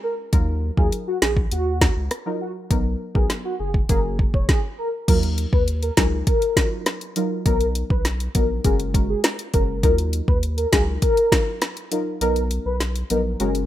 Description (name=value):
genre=dancehall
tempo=101 BPM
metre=4/4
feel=straight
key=Eb minor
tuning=A4 = 437 Hz
part: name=warm velvety synth lead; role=melody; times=0.0-13.5 s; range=Gb4 to Db5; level=-24 LUFS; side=left 1 dB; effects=chorus, digital delay
part: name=deep mellow chord stab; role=accompaniment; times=0.0-13.7 s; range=Gb3 to Bb4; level=-27 LUFS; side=left 1 dB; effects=chorus, sidechain pumping
part: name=warm sub bass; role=bass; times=0.3-13.7 s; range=F1 to Eb2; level=-24 LUFS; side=equal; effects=none
part: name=afro-pop drum kit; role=drums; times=0.3-13.7 s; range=crash cymbal, hi-hat, kick drum, rim click, snare drum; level=-20 LUFS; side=equal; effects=none
room=digital ambience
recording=rough home demo mix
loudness=-19 LUFS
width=side -13 dB against mid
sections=0.0-5.1 A section; 5.1-13.7 B section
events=break 12.2-13.7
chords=0.3 Ebmadd9; 2.7 Bmaj7; 3.9 Gbadd9; 5.1 Ebmadd9; 7.5 Bmaj7; 8.6 Gbadd9; 9.8 Ebmadd9; 12.2 Bmaj7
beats=| 0.33 0.92 1.52 2.11 | 2.71 3.30 3.89 4.49 | 5.08 5.67 6.27 6.86 | 7.46 8.05 8.65 9.24 | 9.83 10.43 11.02 11.62 | 12.21 12.80 13.40